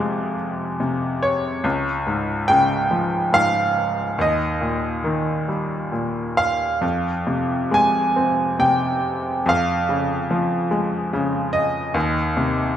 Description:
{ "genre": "classical, lyrical solo piano", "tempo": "67-73 BPM", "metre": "3/4", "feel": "rubato", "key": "unclear", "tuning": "A4 = 439 Hz", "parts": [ { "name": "bright upright piano", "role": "solo", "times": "0.0-12.8 s", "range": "Db2 to Ab5", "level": "-19 LUFS", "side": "equal", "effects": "none" } ], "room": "moderate concert hall reverb, RT60 2.4 s", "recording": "minimal, uncompressed stereo recording", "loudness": "-19 LUFS", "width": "side -10 dB against mid", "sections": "0.0-12.8 A section", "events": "none", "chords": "0.0 Fm; 1.6 Db; 4.2 Eb; 6.8 Fm; 9.5 Db/F; 12.0 Cm/Eb" }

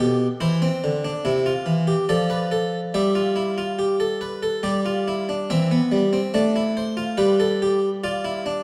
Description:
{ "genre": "classical, baroque-style 3-part fugue for harpsichord", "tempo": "71 BPM", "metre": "3/4", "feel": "straight", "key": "C major", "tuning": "A4 = 440 Hz", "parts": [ { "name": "harpsichord", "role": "solo", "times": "0.0-8.6 s", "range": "B2 to E5", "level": "-22 LUFS", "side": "equal", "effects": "none" } ], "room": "moderate scoring stage reverb, RT60 1.6 s", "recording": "dark, warm production", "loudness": "-22 LUFS", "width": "mono", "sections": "0.0-5.5 A section; 5.5-8.6 B section", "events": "none", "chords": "0.4 C; 2.1 Dm/F; 3.0 G13; 4.7 G5; 5.5 C/E; 7.2 G; 8.0 G7(no3)" }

